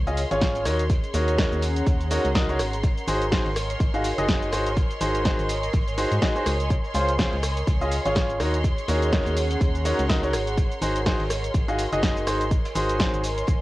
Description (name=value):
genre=piano house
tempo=124 BPM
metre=4/4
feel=swing 58% on 16ths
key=Ab mixolydian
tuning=A4 = 440 Hz
part: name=bright symphonic violin section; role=sustained chords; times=0.0-13.6 s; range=Db5 to C6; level=-33 LUFS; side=equal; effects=sidechain pumping
part: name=organ-like FM bass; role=bass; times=0.0-13.6 s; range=Gb1 to Ab2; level=-27 LUFS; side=equal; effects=sidechain pumping
part: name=airy breathy pad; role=texture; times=0.2-13.6 s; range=Db4 to C6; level=-33 LUFS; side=right 1 dB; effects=chorus, sidechain pumping
part: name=bright grand piano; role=riff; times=0.1-13.2 s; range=Db4 to F5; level=-26 LUFS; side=equal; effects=sidechain pumping, analog delay
part: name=house drum kit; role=drums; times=0.1-13.6 s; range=hi-hat, rim click, shaker, snare drum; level=-29 LUFS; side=equal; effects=cassette tape
part: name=crunchy breakbeat drum kit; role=drums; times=0.2-13.6 s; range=hi-hat, snare drum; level=-42 LUFS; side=equal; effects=none
part: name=electronic kick drum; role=drums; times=0.4-13.6 s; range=none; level=-24 LUFS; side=equal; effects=cassette tape
room=light reverb, studio ambience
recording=home recording on cassette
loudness=-21 LUFS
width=side -17 dB against mid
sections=0.0-13.6 A section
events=none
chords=0.0 Dbmaj7; 0.7 Ebm7; 2.6 Ab7; 6.7 Dbmaj7; 8.4 Ebm7; 10.3 Ab7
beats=0.41 | 0.90 1.38 1.86 2.35 | 2.83 3.32 3.80 4.29 | 4.77 5.25 5.74 6.22 | 6.70 7.19 7.67 8.16 | 8.64 9.12 9.61 10.09 | 10.57 11.06 11.54 12.03 | 12.51 12.99 13.48